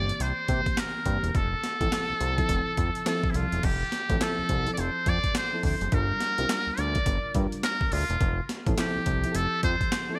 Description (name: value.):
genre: R&B, new jack swing.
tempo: 105 BPM.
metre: 4/4.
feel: swing 61% on 16ths.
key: unclear.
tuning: A4 = 438 Hz.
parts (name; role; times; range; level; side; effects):
trumpet with metal mute; melody; 0.0-10.2 s; E4 to D5; -31 LUFS; equal; none.
FM electric piano; accompaniment; 0.0-10.2 s; E3 to Bb4; -36 LUFS; equal; none.
fat analog bass; bass; 0.0-9.8 s; E1 to C3; -32 LUFS; equal; none.
breakbeat sampler-style drum kit; drums; 0.1-10.1 s; crash cymbal, handclaps, hi-hat, kick drum, snare drum; -32 LUFS; equal; overdrive.
room: moderate lush hall reverb, RT60 2.2 s.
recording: bright 1980s-style digital production.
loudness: -27 LUFS.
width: mono.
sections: 0.0-3.6 A section; 3.6-10.2 B section.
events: none.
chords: 0.0 C7; 1.3 Fmaj7; 5.9 Gm7; 8.2 Fmaj7.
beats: 0.20 0.78 | 1.35 1.92 2.49 3.06 | 3.63 4.20 4.78 5.35 | 5.92 6.49 7.06 7.63 | 8.20 8.78 9.35 9.92.